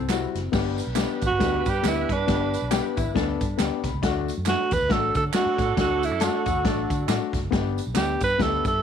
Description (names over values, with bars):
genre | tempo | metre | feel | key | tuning
uptempo 1960s-style soul | 137 BPM | 4/4 | swing 58% on 8ths | G major | A4 = 437 Hz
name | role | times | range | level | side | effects
breathy tenor saxophone | melody | 0.0-8.8 s | D4 to B4 | -24 LUFS | right 4 dB | none
hollow-body jazz guitar | riff | 0.0-7.3 s | C4 to A4 | -32 LUFS | left 11 dB | none
vintage muted fingered electric bass | bass | 0.0-8.8 s | F1 to D3 | -30 LUFS | right 1 dB | none
dark upright piano | accompaniment | 0.1-8.7 s | G3 to B5 | -28 LUFS | left 12 dB | none
swinging big-band drum kit | drums | 0.1-8.7 s | crash cymbal, hi-hat, kick drum, snare drum | -27 LUFS | equal | none
handclaps and tambourine | percussion | 0.1-8.7 s | none | -37 LUFS | right 15 dB | none
warm saxophone section | second line | 0.5-8.8 s | F#3 to E5 | -33 LUFS | right 15 dB | none
room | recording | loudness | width
studio reverb | 1960s-style stereo with parts hard left and right | -21 LUFS | side -8 dB against mid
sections
0.5-8.8 A section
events
band accent 0.0-0.5; upright piano fill 3.4-4.0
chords
0.0 C; 0.5 G; 4.0 D; 7.5 G